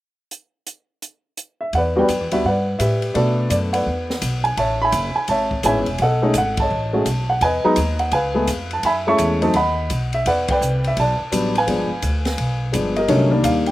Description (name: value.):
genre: jazz piano trio.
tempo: 169 BPM.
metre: 4/4.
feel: swing 64% on 8ths.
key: unclear.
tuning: A4 = 442 Hz.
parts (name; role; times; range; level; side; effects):
open jazz drum kit; drums; 0.3-13.7 s; hi-hat, kick drum, ride cymbal, snare drum; -29 LUFS; left 1 dB; none.
warm upright piano; melody; 1.6-13.7 s; D3 to C#6; -18 LUFS; equal; none.
upright bass; bass; 1.7-13.7 s; E1 to B2; -23 LUFS; equal; none.
room: little or no reverb.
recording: recorded outdoors, with no room sound.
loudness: -17 LUFS.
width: side -15 dB against mid.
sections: 0.3-1.7 A section; 1.7-13.1 B section.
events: band accent 6.5, 10.4.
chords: 0.3 N.C.; 1.7 Em7; 3.2 Bm7; 3.9 E5; 4.6 Amaj7; 6.0 B13; 7.4 Emaj7; 8.1 C#7b13; 8.8 F#m9; 9.5 B; 10.3 Em7; 11.7 G7b9; 13.1 Cm9.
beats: | 0.31 0.67 1.02 1.38 | 1.73 2.09 2.44 2.80 | 3.15 3.51 3.86 4.22 | 4.58 4.93 5.29 5.64 | 6.00 6.35 6.71 7.06 | 7.42 7.77 8.13 8.48 | 8.84 9.19 9.54 9.90 | 10.26 10.61 10.96 11.32 | 11.67 12.03 12.38 12.74 | 13.09 13.45.